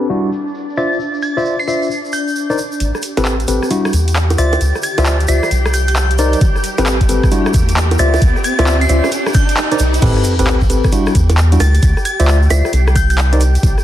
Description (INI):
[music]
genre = UK garage, two-step garage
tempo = 133 BPM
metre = 4/4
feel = swing 64% on 16ths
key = A minor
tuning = A4 = 435 Hz
[part]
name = soft string machine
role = sustained chords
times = 0.0-13.8 s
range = D4 to G5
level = -25 LUFS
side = left 1 dB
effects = ensemble chorus, sidechain pumping
[part]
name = tine electric piano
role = stabs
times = 0.0-13.4 s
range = G3 to E5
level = -18 LUFS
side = left 1 dB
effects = medium stereo tremolo, dub echo
[part]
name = tube shaker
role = percussion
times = 0.0-13.8 s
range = none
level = -30 LUFS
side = right 3 dB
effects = none
[part]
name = glassy synth bell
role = melody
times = 0.8-13.2 s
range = G6 to C7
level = -22 LUFS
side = equal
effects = chorus, phaser, dub echo
[part]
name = rubbery square bass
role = bass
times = 2.8-13.7 s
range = A1 to E2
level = -13 LUFS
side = equal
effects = none
[part]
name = garage drum kit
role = drums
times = 2.8-13.8 s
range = bongos, crash cymbal, handclaps, hi-hat, rim click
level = -20 LUFS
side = right 1 dB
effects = soft clipping on snare
[part]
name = riser and sub drop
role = sound effects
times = 4.8-11.8 s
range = none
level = -23 LUFS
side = right 1 dB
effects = none
[part]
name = electronic kick drum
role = drums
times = 6.4-13.7 s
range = none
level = -14 LUFS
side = equal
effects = none
[sound]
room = light reverb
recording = dense, heavily limited modern master, vinyl crackle, low-pass filter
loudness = -12 LUFS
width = side -12 dB against mid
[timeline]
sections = 0.0-2.8 A section; 2.8-10.0 B section; 10.0-13.8 C section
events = filter sweep on tine electric piano 0.0-2.8; filter sweep 0.0-2.8; build-up 2.8-10.0; riser 4.8-10.0; drop 10.0-13.8; impact 10.0-11.8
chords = 0.1 Em9; 0.8 Dm9; 1.9 Csus2 (rootless); 2.8 Am9; 3.7 Em9; 4.4 Dm9; 5.5 Cm9; 6.4 Am9; 7.3 Em9; 8.0 Dm9; 9.1 C5; 10.0 Am9; 10.9 Em9; 11.6 Dm9; 12.7 C5